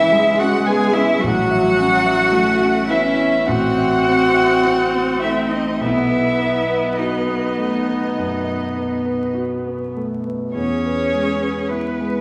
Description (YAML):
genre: classical, slow romantic movement for piano quintet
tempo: 49-54 BPM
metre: 4/4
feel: rubato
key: unclear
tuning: A4 = 440 Hz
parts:
  - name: clear violin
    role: melody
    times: 0.0-12.2 s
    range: B4 to G#5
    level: -27 LUFS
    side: equal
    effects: none
  - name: clear cello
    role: second line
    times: 0.0-12.2 s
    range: B3 to G#4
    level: -23 LUFS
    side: equal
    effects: none
  - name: dark violin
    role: second line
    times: 0.0-12.2 s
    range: B4 to G#5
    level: -26 LUFS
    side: equal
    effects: none
  - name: warm concert grand piano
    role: accompaniment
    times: 0.0-12.2 s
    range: A1 to E5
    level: -24 LUFS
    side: equal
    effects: none
  - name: warm viola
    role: accompaniment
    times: 0.0-12.2 s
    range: E3 to B4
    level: -25 LUFS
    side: equal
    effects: none
room: wet recital hall reverb, RT60 1.4 s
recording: heard from further back in the room, vinyl crackle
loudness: -18 LUFS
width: mono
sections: 0.0-12.2 A section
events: none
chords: 0.0 C#m; 1.2 F#m7/A; 3.5 F#m7b5/A; 5.8 B; 10.6 E